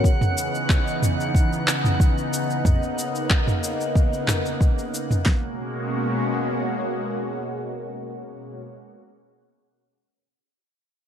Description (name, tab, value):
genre	sunset chillout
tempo	92 BPM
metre	4/4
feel	straight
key	G# minor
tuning	A4 = 441 Hz
part	lush unison pad	sustained chords	0.0-8.6 s	B2 to F#4	-26 LUFS	equal	chorus, phaser
part	deep house drum kit	drums	0.0-5.4 s	handclaps, kick drum, snare drum	-19 LUFS	equal	studio reverb
part	drifting glass-harmonics texture	texture	0.0-5.3 s	F#5 to F#6	-32 LUFS	right 3 dB	chorus, built-in reverb
part	deep house drum kit	drums	0.1-5.2 s	cabasa, handclaps, toms	-24 LUFS	equal	studio reverb
room	light reverb, digital ambience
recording	dark, warm production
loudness	-20 LUFS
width	side -9 dB against mid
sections	0.0-5.3 A section; 5.3-7.9 B section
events	none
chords	0.0 C#m9; 2.6 Bmaj9; 5.3 G#m11